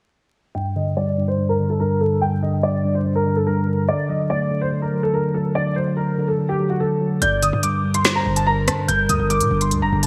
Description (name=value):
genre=hip hop, drill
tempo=144 BPM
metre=4/4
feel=half-time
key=G minor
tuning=A4 = 438 Hz
part: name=dark baby grand piano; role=melody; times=0.5-10.1 s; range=F#4 to G6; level=-24 LUFS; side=equal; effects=analog chorus, low-pass filter, delay
part: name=mellow tine electric piano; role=accompaniment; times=0.6-10.1 s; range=G2 to A3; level=-23 LUFS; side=equal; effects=low-pass filter
part: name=gliding portamento lead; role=second line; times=7.2-10.1 s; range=Bb4 to D5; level=-30 LUFS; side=equal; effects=chorus, delay
part: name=glassy FM pad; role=sustained chords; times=7.8-10.1 s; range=G3 to Bb4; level=-36 LUFS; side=equal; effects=none
part: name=hard-hitting 808-style bass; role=bass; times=7.2-10.1 s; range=G1 to Bb2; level=-28 LUFS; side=equal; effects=none
part: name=drill drum kit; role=drums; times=7.2-10.1 s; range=hi-hat, rim click, snare drum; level=-23 LUFS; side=equal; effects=gated reverb
room=light reverb, digital ambience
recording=bright 1980s-style digital production, vinyl crackle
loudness=-20 LUFS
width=mono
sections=0.6-7.2 A section; 7.2-10.1 B section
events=filter sweep 0.6-7.2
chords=0.6 Gm; 3.9 D; 7.2 Gm